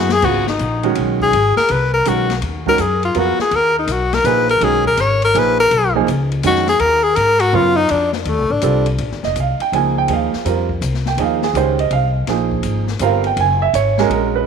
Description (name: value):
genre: modal jazz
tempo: 164 BPM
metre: 3/4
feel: swing 66% on 8ths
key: G# dorian, Bb dorian from 9.0 s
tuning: A4 = 439 Hz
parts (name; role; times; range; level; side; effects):
- breathy tenor saxophone; melody; 0.0-8.9 s; F3 to C#5; -15 LUFS; left 3 dB; none
- warm grand piano; accompaniment; 0.0-14.5 s; C#3 to Ab5; -18 LUFS; right 10 dB; none
- upright bass; bass; 0.0-14.5 s; F1 to G#2; -20 LUFS; left 2 dB; none
- open jazz drum kit; drums; 0.1-14.2 s; crash cymbal, hi-hat, kick drum, ride cymbal, snare drum; -28 LUFS; left 10 dB; none
room: moderate plate reverb, RT60 1.6 s, studio reverb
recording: 1960s-style stereo with parts hard left and right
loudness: -14 LUFS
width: side -6 dB against mid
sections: 0.2-9.0 A section; 9.0-14.5 A section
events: drum fill 0.0; tenor saxophone solo 0.0-9.0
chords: 0.2 G#m11; 7.9 F69; 9.0 Bb9sus4; 13.4 Gbsus2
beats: | 0.23 0.60 0.96 | 1.33 1.69 2.06 | 2.42 2.79 3.15 | 3.52 3.88 4.25 | 4.61 4.98 5.34 | 5.71 6.07 6.44 | 6.80 7.17 7.54 | 7.90 8.27 8.63 | 8.99 9.36 9.72 | 10.09 10.46 10.82 | 11.19 11.55 11.91 | 12.28 12.64 13.01 | 13.38 13.74 14.10